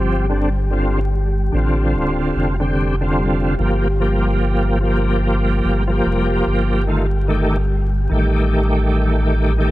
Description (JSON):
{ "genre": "trip hop", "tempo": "73 BPM", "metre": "4/4", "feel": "swing 60% on 16ths", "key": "G minor", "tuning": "A4 = 439 Hz", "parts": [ { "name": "bright tonewheel organ", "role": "accompaniment", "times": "0.0-9.7 s", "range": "D3 to G4", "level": "-19 LUFS", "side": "equal", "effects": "chorus vibrato, slow rotary speaker, tremolo, low-pass filter" }, { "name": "round analog bass", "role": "bass", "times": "0.0-9.7 s", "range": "D1 to A1", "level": "-18 LUFS", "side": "equal", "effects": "none" }, { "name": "wind-like tuned noise texture", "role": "texture", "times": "0.0-9.7 s", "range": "G3 to G4", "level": "-27 LUFS", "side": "left 2 dB", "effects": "built-in reverb" } ], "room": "little or no reverb", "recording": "dark, warm production, vinyl crackle", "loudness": "-16 LUFS", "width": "side -16 dB against mid", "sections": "0.0-9.7 A section", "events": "none", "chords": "0.3 Dm7/G; 3.6 Gm7; 6.9 F9/G", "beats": "| 0.29 1.12 1.94 2.76 | 3.58 4.40 5.22 6.05 | 6.87 7.69 8.51 9.34" }